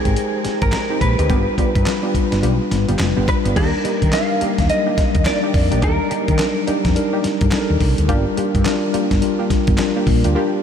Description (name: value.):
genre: R&B, new jack swing.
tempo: 106 BPM.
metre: 4/4.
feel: swing 61% on 16ths.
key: unclear.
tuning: A4 = 440 Hz.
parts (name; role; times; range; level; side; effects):
direct-recorded clean electric guitar; melody; 0.0-6.9 s; Ab4 to F5; -24 LUFS; equal; ensemble chorus, analog delay.
mellow tine electric piano; accompaniment; 0.0-10.6 s; F#3 to G5; -20 LUFS; left 3 dB; medium stereo tremolo.
funky polysynth comp; stabs; 0.0-10.5 s; Ab3 to G4; -26 LUFS; right 3 dB; chorus, analog delay.
woody fretless electric bass; bass; 0.1-10.3 s; F1 to Eb3; -20 LUFS; equal; analog chorus.
dusty soul sampler-style drum kit; drums; 0.1-10.3 s; crash cymbal, handclaps, hi-hat, kick drum, snare drum; -21 LUFS; equal; none.
room: moderate huge ambient reverb, RT60 7.2 s.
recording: dreamy mix soaked in reverb.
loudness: -15 LUFS.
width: side -8 dB against mid.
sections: 0.0-3.6 A section; 3.6-10.6 B section.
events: break 10.4.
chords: 0.0 Abmaj7; 1.3 G7; 3.6 Ebmaj7; 8.1 Gm7.